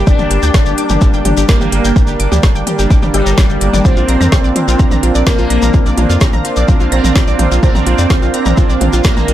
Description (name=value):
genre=melodic techno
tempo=127 BPM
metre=4/4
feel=straight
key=unclear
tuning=A4 = 441 Hz
part: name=sweeping resonant pad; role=sustained chords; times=0.0-9.3 s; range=D4 to G5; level=-24 LUFS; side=left 2 dB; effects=chorus, sidechain pumping
part: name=wide unison pluck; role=arpeggios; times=0.0-9.3 s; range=F4 to Bb6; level=-22 LUFS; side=right 1 dB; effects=sidechain pumping, tape echo
part: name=brassy analog pad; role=stabs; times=0.0-9.3 s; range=G3 to D4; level=-20 LUFS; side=right 3 dB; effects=chorus, tremolo, sidechain pumping, tape echo
part: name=round analog bass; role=bass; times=0.0-9.3 s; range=G1 to F2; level=-15 LUFS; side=equal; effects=tube saturation, sidechain pumping
part: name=resonant sweep polysynth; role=melody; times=0.1-9.3 s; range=G3 to D4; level=-19 LUFS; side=equal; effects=chorus, sidechain pumping, dub echo
part: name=dark detuned synth bell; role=second line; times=0.1-9.3 s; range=G4 to D5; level=-25 LUFS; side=equal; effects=chorus, phaser, sidechain pumping, tape echo
part: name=electronic kick drum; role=drums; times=0.1-9.1 s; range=none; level=-12 LUFS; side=equal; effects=overdrive, studio reverb
part: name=shekere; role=percussion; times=0.1-9.3 s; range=none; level=-27 LUFS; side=left 4 dB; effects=tape echo
part: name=deep house drum kit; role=drums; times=0.2-9.3 s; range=hi-hat, snare drum, toms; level=-19 LUFS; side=left 1 dB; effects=sidechain pumping on toms, studio reverb, sidechain pumping on hats
room=light reverb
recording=echo-heavy mix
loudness=-9 LUFS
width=side -12 dB against mid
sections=0.0-9.3 A section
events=none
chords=0.0 Gm; 3.8 Bbadd9